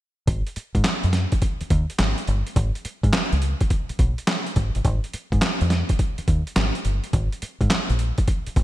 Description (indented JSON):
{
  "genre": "R&B, new jack swing",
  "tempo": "105 BPM",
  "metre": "4/4",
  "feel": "swing 67% on 16ths",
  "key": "G# dorian",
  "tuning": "A4 = 435 Hz",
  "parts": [
    { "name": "deep dub fingered electric bass", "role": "bass", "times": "0.3-8.6 s", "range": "G1 to G#2", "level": "-22 LUFS", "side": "equal", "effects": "none" },
    { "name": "boom bap sampler-style drum kit", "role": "drums", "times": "0.3-8.6 s", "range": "handclaps, hi-hat, kick drum, snare drum", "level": "-22 LUFS", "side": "equal", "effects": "overdrive, gated reverb" }
  ],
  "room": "light reverb",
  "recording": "bright 1980s-style digital production",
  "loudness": "-20 LUFS",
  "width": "side -15 dB against mid",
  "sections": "0.3-8.6 A section",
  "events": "none",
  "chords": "none"
}